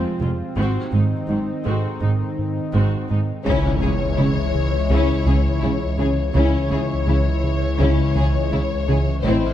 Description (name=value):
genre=cinematic, hybrid orchestral and electronic film score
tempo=83 BPM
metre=4/4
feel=straight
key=C# harmonic minor from 3.5 s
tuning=A4 = 439 Hz
part: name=warm symphonic viola section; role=accompaniment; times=0.0-9.5 s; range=F#3 to F#4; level=-29 LUFS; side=left 1 dB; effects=none
part: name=warm analog pad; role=sustained chords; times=0.0-9.5 s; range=D#3 to C#5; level=-28 LUFS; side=equal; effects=chorus
part: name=harp-like synth pluck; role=arpeggios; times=0.0-9.5 s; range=C#3 to D#4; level=-30 LUFS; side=left 2 dB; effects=none
part: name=rubbery square bass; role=riff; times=0.0-9.5 s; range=C#2 to G#3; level=-25 LUFS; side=right 1 dB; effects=none
part: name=felt-muted upright piano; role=texture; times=0.0-9.5 s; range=G3 to D#5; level=-40 LUFS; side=left 1 dB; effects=none
part: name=warm studio cello section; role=bass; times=0.2-9.3 s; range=F2 to C#3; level=-26 LUFS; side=right 2 dB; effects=none
part: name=warm symphonic double bass section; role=bass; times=0.2-9.3 s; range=F1 to C#2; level=-25 LUFS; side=right 2 dB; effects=none
part: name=warm symphonic violin section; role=second line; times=3.4-9.5 s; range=C4 to G#4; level=-28 LUFS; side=left 5 dB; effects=none
part: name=warm symphonic violin section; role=melody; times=3.5-9.5 s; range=C5 to C#5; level=-28 LUFS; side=left 8 dB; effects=none
part: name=dark detuned saw bass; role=bass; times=3.5-9.5 s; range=A1 to C#2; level=-23 LUFS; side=left 1 dB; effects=none
part: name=impact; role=sound effects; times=3.5-6.4 s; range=none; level=-29 LUFS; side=left 1 dB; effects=none
room=light reverb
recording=dark, warm production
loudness=-18 LUFS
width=side -11 dB against mid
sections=0.0-3.5 A section; 3.5-9.5 B section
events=impact 3.5-6.4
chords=0.0 Fm; 0.6 G#7; 3.5 C#m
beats=| 0.57 1.29 2.02 2.74 | 3.46 4.18 4.91 5.63 | 6.35 7.08 7.80 8.52 | 9.24